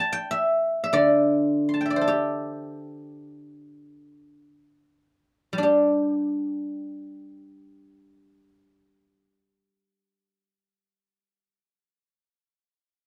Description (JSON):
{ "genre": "chinese traditional, Chinese solo plucked strings", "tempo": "free time", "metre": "none", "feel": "none", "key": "G zhi mode", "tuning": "A4 = 440 Hz", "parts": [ { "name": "guzheng", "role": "solo", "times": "0.0-11.6 s", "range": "D3 to C6", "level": "-24 LUFS", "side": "equal", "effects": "none" } ], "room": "moderate booth ambience, RT60 0.2 s", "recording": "dry, close 1970s-style studio recording", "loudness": "-23 LUFS", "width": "mono", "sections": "0.0-5.6 A section; 5.6-10.0 B section", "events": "slowing down 0.0-5.6", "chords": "none", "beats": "free time" }